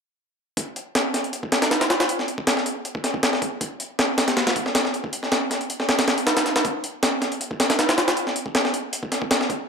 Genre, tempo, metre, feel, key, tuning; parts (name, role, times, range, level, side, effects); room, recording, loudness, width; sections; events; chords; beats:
drum and bass; 158 BPM; 4/4; straight
jungle sampler-style drum kit; drums; 0.6-9.6 s; hi-hat, kick drum, snare drum; -20 LUFS; equal; overdrive, high-pass filter on kick, high-pass filter on hats, high-pass filter on snare, high-pass filter on room
light reverb; -20 LUFS; side -5 dB against mid
0.6-9.7 A section
| 0.57 0.95 1.33 1.71 | 2.09 2.47 2.85 3.23 | 3.61 3.99 4.37 4.75 | 5.13 5.51 5.89 6.27 | 6.65 7.03 7.41 7.79 | 8.17 8.55 8.93 9.31